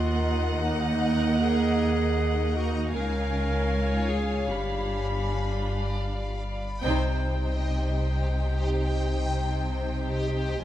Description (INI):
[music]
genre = cinematic, suspense film score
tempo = 78 BPM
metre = 5/4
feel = straight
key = C minor from 6.8 s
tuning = A4 = 441 Hz
[part]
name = warm studio violin section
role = melody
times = 0.0-10.6 s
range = Gb5 to B5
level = -35 LUFS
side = left 1 dB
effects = none
[part]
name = clear clarinet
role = second line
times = 0.0-6.4 s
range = Eb4 to Bb4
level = -32 LUFS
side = left 1 dB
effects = none
[part]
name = rich chamber violin section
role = second line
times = 0.0-10.6 s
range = C5 to F5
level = -35 LUFS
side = left 2 dB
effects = none
[part]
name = rich chamber viola section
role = accompaniment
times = 0.0-10.6 s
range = Bb3 to Eb4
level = -33 LUFS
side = right 4 dB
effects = none
[part]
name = backwards swelling texture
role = sustained chords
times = 0.0-10.6 s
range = Eb4 to B5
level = -36 LUFS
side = left 1 dB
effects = built-in reverb
[part]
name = dark chamber double bass section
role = bass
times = 0.0-10.6 s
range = F1 to Eb2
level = -33 LUFS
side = right 2 dB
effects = none
[part]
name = warm chamber cello section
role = bass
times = 0.0-10.6 s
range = Db2 to C3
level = -34 LUFS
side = right 1 dB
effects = none
[part]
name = sub bass with octave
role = drone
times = 0.0-10.6 s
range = G1 to Eb2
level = -29 LUFS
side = equal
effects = none
[sound]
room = moderate scoring stage reverb, RT60 1.8 s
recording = close, detailed microphones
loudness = -24 LUFS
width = side -12 dB against mid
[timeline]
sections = 0.0-6.8 A section; 6.8-10.6 B section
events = band accent 6.8-7.6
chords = 0.0 Ebm; 2.9 Db; 4.5 G7; 6.8 Cm